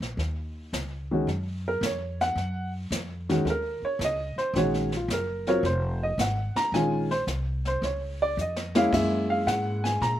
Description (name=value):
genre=jazz piano trio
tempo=110 BPM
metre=4/4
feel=swing 68% on 8ths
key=unclear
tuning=A4 = 440 Hz
part: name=upright bass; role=bass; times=0.0-10.2 s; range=F1 to Bb2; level=-31 LUFS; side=equal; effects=none
part: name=jazz brush drum kit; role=drums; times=0.0-10.2 s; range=brushed snare drum, crash cymbal, hi-hat, kick drum, snare drum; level=-34 LUFS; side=equal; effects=none
part: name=warm baby grand piano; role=melody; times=1.1-10.2 s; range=Eb3 to Bb5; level=-25 LUFS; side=equal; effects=none
room=little or no reverb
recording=none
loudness=-25 LUFS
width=side -12 dB against mid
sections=0.0-10.2 A section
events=grand piano solo 0.0-10.2; drum fill 8.4-8.9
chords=0.2 Ebm9; 6.7 Bbm9; 8.9 Gb7